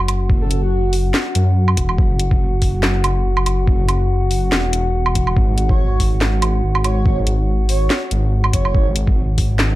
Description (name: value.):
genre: deep dubstep.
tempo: 142 BPM.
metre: 4/4.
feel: swing 55% on 16ths, half-time.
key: unclear.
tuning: A4 = 441 Hz.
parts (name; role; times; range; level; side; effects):
dark analog pad; sustained chords; 0.0-9.8 s; F#4 to F#5; -25 LUFS; left 1 dB; chorus.
dark detuned saw bass; bass; 0.0-9.8 s; E1 to F#2; -17 LUFS; equal; none.
garage drum kit; drums; 0.1-9.7 s; handclaps, hi-hat, snare drum, woodblock; -21 LUFS; right 1 dB; none.
electronic kick drum; drums; 0.3-9.5 s; none; -18 LUFS; equal; overdrive.
breathy flute-like synth lead; melody; 0.4-0.9, 5.7-8.9 s; F#4 to C#5; -27 LUFS; right 2 dB; lush chorus, dub echo.
room: little or no reverb.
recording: dark, warm production.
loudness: -14 LUFS.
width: side -16 dB against mid.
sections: 0.0-9.8 A section.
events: none.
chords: 0.0 Esus2; 5.4 N.C..